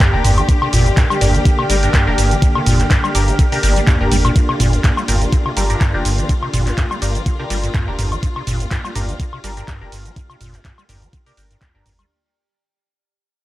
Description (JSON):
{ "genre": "acid house", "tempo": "124 BPM", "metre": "4/4", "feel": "swing 55% on 16ths", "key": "G minor", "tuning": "A4 = 441 Hz", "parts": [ { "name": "dark studio string section", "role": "sustained chords", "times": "0.0-12.1 s", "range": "D3 to G4", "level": "-23 LUFS", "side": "left 1 dB", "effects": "sidechain pumping" }, { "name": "acid bass, square", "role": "riff", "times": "0.0-12.1 s", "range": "G1 to G3", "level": "-21 LUFS", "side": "equal", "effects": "tube saturation, ensemble chorus, cassette tape, sidechain pumping" }, { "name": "electronic kick drum", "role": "drums", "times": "0.0-11.7 s", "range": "none", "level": "-15 LUFS", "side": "equal", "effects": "none" }, { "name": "punchy analog drum machine", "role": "drums", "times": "0.0-12.1 s", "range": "cabasa, handclaps, hi-hat, ride cymbal, toms, woodblock", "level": "-21 LUFS", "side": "equal", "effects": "none" }, { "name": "warbly tape-like pad", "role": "texture", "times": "0.0-12.1 s", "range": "G4 to F6", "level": "-27 LUFS", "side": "right 2 dB", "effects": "chorus, built-in reverb, sidechain pumping" }, { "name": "band-passed chord stab", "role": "stabs", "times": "0.1-11.9 s", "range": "D4 to Bb4", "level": "-26 LUFS", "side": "left 2 dB", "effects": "phaser, cassette tape, dub echo" }, { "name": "warm sub bass", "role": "bass", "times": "0.1-12.0 s", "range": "F1 to G1", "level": "-19 LUFS", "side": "equal", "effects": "sidechain pumping" } ], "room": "digital ambience", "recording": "none", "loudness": "-13 LUFS", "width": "side -16 dB against mid", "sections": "0.0-12.1 A section", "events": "drop 0.0-12.1; fade-out 4.4-12.1", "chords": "0.0 Gm" }